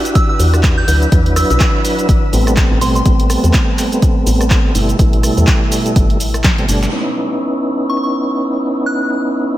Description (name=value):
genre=deep house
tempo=124 BPM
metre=4/4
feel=swing 58% on 16ths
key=C# minor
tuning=A4 = 435 Hz
part: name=tonewheel organ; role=stabs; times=0.0-9.6 s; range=B2 to B4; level=-17 LUFS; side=right 1 dB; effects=chorus vibrato, stopped rotary speaker, sidechain pumping, diffuse ambient delay
part: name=string machine, violins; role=texture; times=0.0-6.9 s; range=B4 to E6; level=-34 LUFS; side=left 2 dB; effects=none
part: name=punchy analog drum machine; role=drums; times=0.1-7.0 s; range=crash cymbal, handclaps, hi-hat, rim click, shaker, snare drum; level=-21 LUFS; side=equal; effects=low-pass filter on snare, low-pass filter on hats, low-pass filter on perc, low-pass filter on cymbals
part: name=soft synth bell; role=melody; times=0.2-3.0, 7.9-9.0 s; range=C6 to G6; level=-22 LUFS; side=equal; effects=chorus, tape echo
part: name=electronic kick drum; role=drums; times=0.2-6.6 s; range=none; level=-14 LUFS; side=equal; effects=overdrive
part: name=woody FM bass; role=bass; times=0.4-6.9 s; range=G1 to E2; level=-15 LUFS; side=equal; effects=sidechain pumping
room=moderate lush hall reverb, RT60 1.8 s, digital ambience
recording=dreamy mix soaked in reverb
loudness=-11 LUFS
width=side -14 dB against mid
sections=0.0-6.9 A section; 6.9-9.6 B section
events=drum fill 6.4-6.9; band accent 6.8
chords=0.0 Em9; 2.1 Am9; 6.9 C#m9